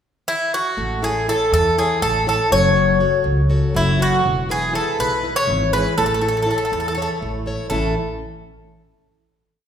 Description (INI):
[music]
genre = greek folk, Greek bouzouki band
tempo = 242 BPM (eighths)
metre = 7/8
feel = straight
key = A major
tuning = A4 = 441 Hz
[part]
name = Greek bouzouki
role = melody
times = 0.3-7.9 s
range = E4 to C#5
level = -18 LUFS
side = equal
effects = none
[part]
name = picked plugged-in steel-string acoustic guitar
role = accompaniment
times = 0.8-7.9 s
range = A2 to C#5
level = -24 LUFS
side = left 2 dB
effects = none
[part]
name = upright bass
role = bass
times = 0.8-7.9 s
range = E1 to E2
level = -22 LUFS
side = right 1 dB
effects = none
[sound]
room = wet recital hall reverb, RT60 1.4 s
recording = recorded in a church or concert hall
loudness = -16 LUFS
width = side -8 dB against mid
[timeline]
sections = 0.0-0.8 pickup bar; 0.8-7.7 A section; 7.7-9.4 final chord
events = none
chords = 0.0 N.C.; 0.8 A; 2.5 F#m; 4.3 E; 6.0 A